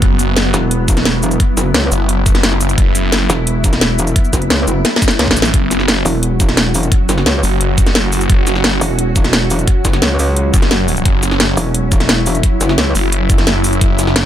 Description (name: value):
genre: dark technical drum and bass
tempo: 174 BPM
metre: 4/4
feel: straight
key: unclear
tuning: A4 = 440 Hz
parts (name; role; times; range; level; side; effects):
- swarming drone; sustained chords; 0.0-14.3 s; F#3 to F#4; -20 LUFS; equal; built-in reverb, sidechain pumping
- phased detuned saw bass; bass; 0.0-3.3, 5.4-14.3 s; F#1 to A1; -16 LUFS; equal; phaser, tube saturation, sidechain pumping
- drum and bass drum kit; drums; 0.0-14.2 s; cabasa, hi-hat, snare drum; -16 LUFS; equal; none
- electronic kick drum; drums; 0.0-13.9 s; none; -13 LUFS; equal; none
- metallic wobble bass; bass; 0.5-12.9 s; E1 to C#2; -16 LUFS; equal; chorus
room: little or no reverb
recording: none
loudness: -11 LUFS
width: side -11 dB against mid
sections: 0.0-5.5 A section; 5.5-14.3 A section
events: drop 0.0-5.5, 5.5-14.3; drum fill 4.8-5.5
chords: 0.0 N.C.; 5.5 F#5